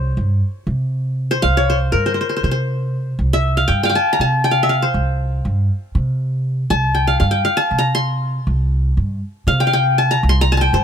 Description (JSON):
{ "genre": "Turkish makam ensemble", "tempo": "239 BPM (eighths)", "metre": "7/8", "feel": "straight", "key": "C makam hicaz", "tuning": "A4 = 440 Hz", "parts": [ { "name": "qanun", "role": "melody", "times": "0.0-10.8 s", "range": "Bb4 to C6", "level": "-17 LUFS", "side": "left 1 dB", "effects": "none" }, { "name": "upright bass", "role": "bass", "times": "0.0-10.8 s", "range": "C2 to C3", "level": "-18 LUFS", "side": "right 1 dB", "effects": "none" } ], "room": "little or no reverb", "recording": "close, detailed microphones", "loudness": "-15 LUFS", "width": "side -8 dB against mid", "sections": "0.0-10.8 A section", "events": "none", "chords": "none", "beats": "0.17 0.42 0.68 0.93 1.18 | 1.43 1.68 1.93 2.18 2.44 2.69 2.94 | 3.19 3.44 3.69 3.94 4.20 4.45 4.70 | 4.95 5.20 5.45 5.70 5.96 6.21 6.46 | 6.71 6.96 7.21 7.46 7.71 7.96 8.22 | 8.47 8.72 8.97 9.22 9.47 9.72 9.97 | 10.23 10.48 10.73" }